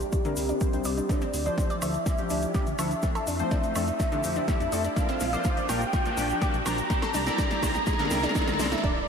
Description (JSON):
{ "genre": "progressive house", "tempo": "124 BPM", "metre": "4/4", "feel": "straight", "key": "unclear", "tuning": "A4 = 440 Hz", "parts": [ { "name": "wide unison lead", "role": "melody", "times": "0.0-9.1 s", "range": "G4 to Bb5", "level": "-31 LUFS", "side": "equal", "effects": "sidechain pumping, analog delay" }, { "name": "fat analog bass", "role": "bass", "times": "0.0-8.8 s", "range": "Bb1 to F2", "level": "-33 LUFS", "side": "equal", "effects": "sidechain pumping" }, { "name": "deep house drum kit", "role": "drums", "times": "0.0-8.9 s", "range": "hi-hat, snare drum, woodblock", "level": "-34 LUFS", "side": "right 1 dB", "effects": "overdrive, sidechain pumping on hats, sidechain pumping on perc" }, { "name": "egg shaker", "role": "percussion", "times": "0.0-8.8 s", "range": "none", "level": "-41 LUFS", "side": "left 3 dB", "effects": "none" }, { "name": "riser and impact", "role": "sound effects", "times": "0.0-9.1 s", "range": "none", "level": "-37 LUFS", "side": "right 1 dB", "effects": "none" }, { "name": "electronic kick drum", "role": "drums", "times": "0.1-8.9 s", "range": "none", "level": "-28 LUFS", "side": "equal", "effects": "overdrive" }, { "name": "analog pluck", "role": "arpeggios", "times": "0.2-8.9 s", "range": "D3 to D5", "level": "-33 LUFS", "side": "equal", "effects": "chorus, vintage 12-bit sampler grit, sidechain pumping, analog delay" }, { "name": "chorused polysynth", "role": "stabs", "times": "0.2-9.0 s", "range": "F3 to D5", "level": "-32 LUFS", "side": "left 2 dB", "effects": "vintage 12-bit sampler grit, sidechain pumping, analog delay" } ], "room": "wet huge ambient reverb, RT60 4.7 s", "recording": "dreamy mix soaked in reverb", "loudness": "-24 LUFS", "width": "side -6 dB against mid", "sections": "0.0-8.8 A section", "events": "build-up 0.0-8.8; riser 0.0-8.8; filter sweep on synth pluck 0.0-8.8; filter sweep on analog polysynth 0.0-8.8; filter sweep on analog synth lead 0.0-8.8; drum fill 1.1-8.8; impact 8.8", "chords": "0.0 C; 1.1 Dmadd9; 3.0 F; 5.0 Bb; 6.9 C" }